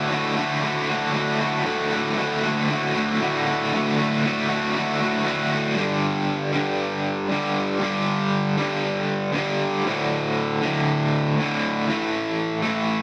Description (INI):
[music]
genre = rock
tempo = 118 BPM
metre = 4/4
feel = straight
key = D major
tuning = A4 = 439 Hz
[part]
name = raw garage guitar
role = solo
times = 0.0-13.0 s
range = D2 to F#4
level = -23 LUFS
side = equal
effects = overdrive, tremolo
[sound]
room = moderate large studio reverb, RT60 1.2 s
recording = band playing live in one room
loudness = -23 LUFS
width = mono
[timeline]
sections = 0.0-5.8 A section; 5.8-13.0 B section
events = none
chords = 0.0 D; 5.8 G5; 9.9 D5; 11.9 A5